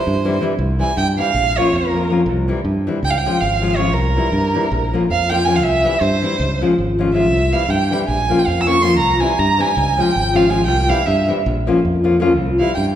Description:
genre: balkan folk, Balkan wedding band.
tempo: 321 BPM (eighths).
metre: 9/8.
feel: straight.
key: C phrygian dominant.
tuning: A4 = 438 Hz.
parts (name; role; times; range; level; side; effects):
modern bright fingered electric bass; bass; 0.1-13.0 s; Ab1 to G2; -20 LUFS; equal; none.
nylon-string guitar; accompaniment; 0.2-12.7 s; E3 to F4; -18 LUFS; left 2 dB; none.
rich violin; second line; 0.8-12.8 s; Bb4 to E6; -18 LUFS; right 3 dB; none.
room: wet recital hall reverb, RT60 1.8 s.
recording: recorded in a church or concert hall.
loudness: -14 LUFS.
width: side -10 dB against mid.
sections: 0.6-13.0 A section.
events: violin solo 0.6-13.0.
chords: 0.0 C; 1.3 Bbm; 2.3 C; 3.0 Db; 4.0 C; 4.7 Bbm; 5.6 C; 6.4 Db; 7.3 C; 8.1 Bbm; 9.0 C; 9.7 Db; 10.7 C; 11.4 Bbm; 12.4 C.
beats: 0.03 0.21 0.40 | 0.59 0.78 0.96 1.15 1.33 1.52 1.71 1.90 2.08 | 2.27 2.46 2.64 2.83 3.02 3.20 3.39 3.58 3.76 | 3.95 4.14 4.32 4.51 4.70 4.88 5.07 5.26 5.44 | 5.63 5.82 6.00 6.19 6.38 6.56 6.75 6.93 7.12 | 7.31 7.50 7.68 7.87 8.06 8.24 8.43 8.62 8.80 | 8.99 9.18 9.37 9.55 9.74 9.93 10.12 10.31 10.49 | 10.68 10.87 11.06 11.25 11.44 11.62 11.81 12.00 12.19 | 12.38 12.56 12.75 12.94.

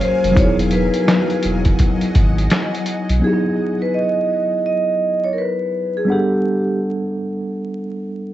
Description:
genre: lo-fi hip hop.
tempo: 84 BPM.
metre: 4/4.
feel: swing 62% on 16ths.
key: E major.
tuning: A4 = 440 Hz.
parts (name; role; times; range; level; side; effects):
vibraphone with medium mallets; melody; 0.0-6.8 s; G4 to D#5; -20 LUFS; equal; none.
mellow tine electric piano; accompaniment; 0.0-8.3 s; F#3 to F#5; -20 LUFS; right 1 dB; medium stereo tremolo, cassette tape.
granular cloud pad; sustained chords; 0.0-3.2 s; F#3 to G#5; -26 LUFS; left 2 dB; built-in reverb.
trip hop sampler-style drum kit; drums; 0.0-3.2 s; hi-hat, kick drum, snare drum; -17 LUFS; equal; vintage 12-bit sampler grit.
warm sub bass; bass; 0.2-3.2 s; E1 to B1; -20 LUFS; equal; tube saturation.
room: light reverb, digital ambience.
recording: worn, warbling old tape, cassette tape, vinyl crackle, warbly pitch drift, nothing above 7.9 kHz.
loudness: -16 LUFS.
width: side -14 dB against mid.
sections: 0.0-3.2 A section; 3.2-8.3 B section.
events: none.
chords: 0.4 Emaj9; 6.1 Gmaj9.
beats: | 0.37 1.08 1.80 2.51 | 3.23 3.94 4.65 5.37 | 6.08 6.80 7.51 8.22.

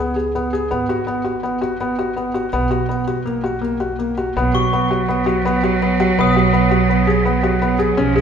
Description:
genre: contemporary instrumental, chamber music in an uneven meter.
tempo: 166 BPM.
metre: 5/4.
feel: straight.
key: B major.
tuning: A4 = 441 Hz.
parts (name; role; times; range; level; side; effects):
felt-muted upright piano; arpeggios; 0.0-8.2 s; A#3 to G#4; -18 LUFS; left 1 dB; none.
upright bass; bass; 0.0-8.2 s; G#1 to C#2; -23 LUFS; right 2 dB; none.
rich cello; second line; 4.4-8.2 s; E#3 to F#3; -18 LUFS; right 5 dB; none.
glockenspiel with brass mallets; texture; 4.5-7.5 s; C#6 to D#6; -25 LUFS; left 5 dB; none.
room: wet scoring stage reverb, RT60 2.0 s.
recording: recorded in a church or concert hall.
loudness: -16 LUFS.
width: side -7 dB against mid.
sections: 0.0-4.4 A section; 4.4-8.2 B section.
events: none.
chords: 0.0 C#5; 0.7 G#m7; 2.5 B5; 4.4 B.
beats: 0.00 0.35 | 0.71 1.07 1.44 1.80 2.16 | 2.52 2.89 3.25 3.62 3.99 | 4.36 4.72 5.09 5.46 5.82 | 6.18 6.54 6.91 7.26 7.62 | 7.99.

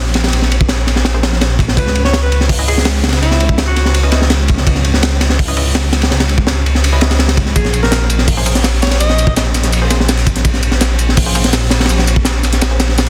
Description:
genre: drum and bass, jungle.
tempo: 166 BPM.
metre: 4/4.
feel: straight.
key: Bb phrygian.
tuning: A4 = 440 Hz.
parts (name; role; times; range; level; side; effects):
dark detuned saw bass; bass; 0.0-13.1 s; Bb1 to Db2; -16 LUFS; equal; none.
crunchy breakbeat drum kit; drums; 0.1-13.1 s; hi-hat, kick drum, ride cymbal, snare drum; -16 LUFS; equal; none.
filtered dub chord stab; stabs; 1.1-12.8 s; Bb3 to Eb5; -29 LUFS; equal; none.
clear alto saxophone; melody; 1.8-4.0, 7.6-9.4 s; Fb4 to Eb5; -23 LUFS; equal; dub echo.
breakbeat sampler-style drum kit; drums; 7.6-13.1 s; hi-hat, snare drum, tambourine; -26 LUFS; equal; overdrive, high-pass filter on perc, high-pass filter on snare, high-pass filter on hats, high-pass filter on room.
room: little or no reverb.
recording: dense, heavily limited modern master.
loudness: -13 LUFS.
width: mono.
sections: 0.0-13.1 A section.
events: none.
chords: 0.0 N.C.; 1.8 Dbm9; 7.6 Bbm9.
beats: | 0.33 0.69 1.05 1.41 | 1.77 2.13 2.50 2.86 | 3.22 3.58 3.94 4.30 | 4.67 5.03 5.39 5.75 | 6.11 6.47 6.83 7.20 | 7.56 7.92 8.28 8.64 | 9.00 9.36 9.73 10.09 | 10.45 10.81 11.17 11.53 | 11.89 12.26 12.62 12.98.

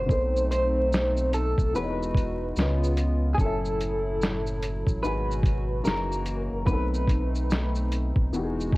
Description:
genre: lo-fi hip hop.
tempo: 73 BPM.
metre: 4/4.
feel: swing 62% on 16ths.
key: unclear.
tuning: A4 = 440 Hz.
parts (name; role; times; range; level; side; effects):
electric guitar through a small old amp; melody; 0.0-8.8 s; G#4 to B#4; -30 LUFS; equal; tremolo, low-pass filter, cassette tape.
dark upright piano; accompaniment; 0.0-8.8 s; B2 to G#5; -33 LUFS; left 2 dB; low-pass filter, cassette tape.
hollow soft pad; sustained chords; 0.0-8.8 s; A2 to F#4; -34 LUFS; equal; chorus, low-pass filter, cassette tape.
sub bass with octave; bass; 0.0-8.8 s; E1 to C#2; -28 LUFS; equal; none.
lo-fi sampler-style drum kit; drums; 0.1-8.8 s; hi-hat, kick drum, shaker, snare drum; -26 LUFS; equal; cassette tape.
room: digital ambience.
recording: home recording on cassette, vinyl crackle.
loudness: -23 LUFS.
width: side -20 dB against mid.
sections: 0.0-8.8 A section.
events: upright piano fill 8.3-8.8.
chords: 0.1 B7b9; 1.7 Emaj9; 2.6 C#7; 3.4 F#m9; 5.0 G#m7; 5.8 F#13; 6.7 B7b9.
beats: | 0.09 0.92 1.74 2.56 | 3.38 4.20 5.03 5.85 | 6.67 7.49 8.31.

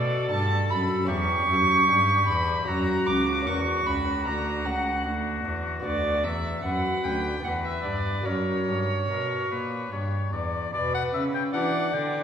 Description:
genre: classical, baroque-style sonata movement with continuo.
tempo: 75 BPM.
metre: 3/4.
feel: rubato.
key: B minor.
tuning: A4 = 444 Hz.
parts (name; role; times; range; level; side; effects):
clear oboe; melody; 0.0-12.2 s; F#4 to G5; -31 LUFS; left 5 dB; none.
dark violin; second line; 0.0-12.2 s; B4 to D6; -26 LUFS; right 2 dB; none.
lute; accompaniment; 0.0-12.2 s; D2 to E5; -33 LUFS; left 1 dB; none.
rich cello; bass; 0.0-12.2 s; C#2 to E3; -28 LUFS; equal; none.
room: wet recital hall reverb, RT60 1.7 s.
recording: recorded in a church or concert hall.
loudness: -23 LUFS.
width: side -8 dB against mid.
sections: 0.0-10.7 A section; 10.7-12.2 A section.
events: none.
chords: 0.0 Bm; 1.1 C#dim/E; 2.7 F#; 3.5 F#7; 5.8 Bm/D; 7.4 Em; 8.3 F#; 10.7 Bm.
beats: 0.31 | 1.09 1.88 2.68 | 3.47 4.26 5.05 | 5.84 6.64 7.44 | 8.26 9.09 9.91 | 10.74 11.54.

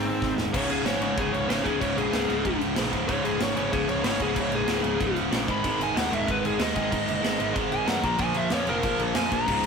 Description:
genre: punk rock.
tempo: 188 BPM.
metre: 4/4.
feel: straight.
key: Db major.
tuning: A4 = 441 Hz.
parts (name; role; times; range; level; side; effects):
biting lead guitar; melody; 0.0-9.7 s; C4 to Cb6; -28 LUFS; left 2 dB; overdrive.
cranked stack guitar; riff; 0.0-9.7 s; Db2 to Bb3; -26 LUFS; right 1 dB; overdrive.
modern bright picked electric bass; bass; 0.0-9.7 s; Db1 to Gb2; -35 LUFS; equal; none.
big rock drum kit; drums; 0.2-9.7 s; crash cymbal, kick drum, snare drum; -30 LUFS; equal; none.
room: light reverb.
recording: rough rehearsal-room recording.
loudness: -23 LUFS.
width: side -5 dB against mid.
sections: 0.5-9.7 A section.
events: drum fill 0.2-0.5; lead electric guitar solo 0.5-9.7.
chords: 0.0 Ab; 0.5 Db5; 5.5 Ab5; 8.0 Bb5.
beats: 0.22 | 0.54 0.86 1.18 1.50 | 1.81 2.13 2.45 2.77 | 3.09 3.41 3.73 4.05 | 4.37 4.69 5.00 5.32 | 5.64 5.96 6.28 6.60 | 6.92 7.24 7.56 7.88 | 8.20 8.52 8.83 9.15 | 9.47.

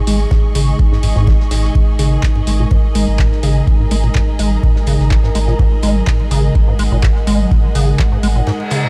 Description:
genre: acid house.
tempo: 125 BPM.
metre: 4/4.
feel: straight.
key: unclear.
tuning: A4 = 440 Hz.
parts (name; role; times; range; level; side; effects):
warbly tape-like pad; sustained chords; 0.0-8.9 s; G#3 to A#4; -28 LUFS; equal; chorus, built-in reverb, sidechain pumping.
deep acid bass; riff; 0.0-8.9 s; G#2 to G#3; -21 LUFS; equal; overdrive, analog chorus, sidechain pumping, delay.
dark studio string section; texture; 0.0-8.9 s; G#4 to C#6; -29 LUFS; equal; sidechain pumping.
saturated sub bass; bass; 0.1-8.4 s; G#1; -19 LUFS; equal; tube saturation, sidechain pumping.
booming analog drum machine; drums; 0.1-8.8 s; handclaps, hi-hat; -29 LUFS; equal; none.
damped 70s drum kit; drums; 0.1-8.8 s; ride cymbal, snare drum; -38 LUFS; equal; none.
electronic kick drum; drums; 0.3-8.1 s; none; -17 LUFS; equal; none.
reverse cymbal; sound effects; 8.6-8.9 s; none; -23 LUFS; equal; none.
room: small room ambience.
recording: dark, warm production.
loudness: -14 LUFS.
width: mono.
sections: 0.0-8.9 A section.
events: filter sweep on acid bass 0.0-8.9; reverse cymbal 8.6.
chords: 0.0 G#5.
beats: 0.31 0.79 1.27 | 1.75 2.23 2.71 3.19 | 3.67 4.15 4.63 5.11 | 5.59 6.07 6.55 7.03 | 7.51 7.99 8.47.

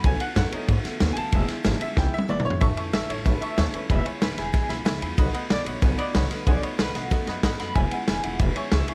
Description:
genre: rockabilly.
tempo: 187 BPM.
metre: 4/4.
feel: straight.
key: E major.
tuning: A4 = 440 Hz.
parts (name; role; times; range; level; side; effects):
bright upright piano; accompaniment; 0.0-8.9 s; G#3 to C#6; -35 LUFS; equal; none.
picked steel-string acoustic guitar; accompaniment; 0.0-8.9 s; E2 to F#4; -36 LUFS; equal; none.
upright bass; bass; 0.0-8.9 s; E1 to G#2; -29 LUFS; equal; none.
vintage drum kit; drums; 0.0-8.9 s; kick drum, ride cymbal, snare drum, toms; -27 LUFS; equal; none.
electric guitar through a small old amp; melody; 2.9-8.9 s; F#4 to B5; -34 LUFS; equal; tremolo, analog delay.
room: little or no reverb.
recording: none.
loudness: -24 LUFS.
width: mono.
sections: 0.0-2.6 A section; 2.6-8.9 B section.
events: upright piano solo 0.0-2.6; drum fill 2.0-2.6.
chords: 0.0 B7; 1.3 E; 2.6 A; 3.9 E; 5.2 B7; 7.8 E.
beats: | 0.05 0.37 0.69 1.01 | 1.33 1.65 1.97 2.29 | 2.61 2.93 3.25 3.58 | 3.90 4.22 4.54 4.86 | 5.18 5.50 5.83 6.15 | 6.47 6.79 7.11 7.43 | 7.75 8.07 8.40 8.72.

